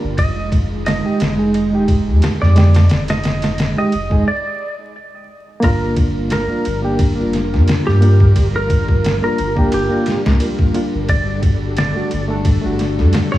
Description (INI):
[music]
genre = trip hop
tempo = 88 BPM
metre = 4/4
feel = swing 55% on 16ths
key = G phrygian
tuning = A4 = 442 Hz
[part]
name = barky reed electric piano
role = accompaniment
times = 0.0-13.4 s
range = Ab3 to A4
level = -20 LUFS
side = right 1 dB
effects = overdrive, tremolo
[part]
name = string machine, cellos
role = sustained chords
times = 0.0-13.4 s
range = G3 to Bb4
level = -24 LUFS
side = equal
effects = ensemble chorus
[part]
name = soft dub sub bass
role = bass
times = 0.0-13.4 s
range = Eb1 to G2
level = -16 LUFS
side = equal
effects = none
[part]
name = clean lap steel guitar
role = melody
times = 0.2-13.4 s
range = G4 to Eb5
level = -23 LUFS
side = right 1 dB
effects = tape echo
[part]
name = trip hop sampler-style drum kit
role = drums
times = 0.2-13.4 s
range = kick drum, ride cymbal, snare drum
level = -18 LUFS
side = equal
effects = small room ambience
[sound]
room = light reverb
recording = vinyl crackle, small room ambience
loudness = -13 LUFS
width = side -14 dB against mid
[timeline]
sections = 0.0-5.6 A section; 5.6-13.4 B section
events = break 4.3-5.6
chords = 0.2 Fm7; 5.6 Gm7; 11.1 D/G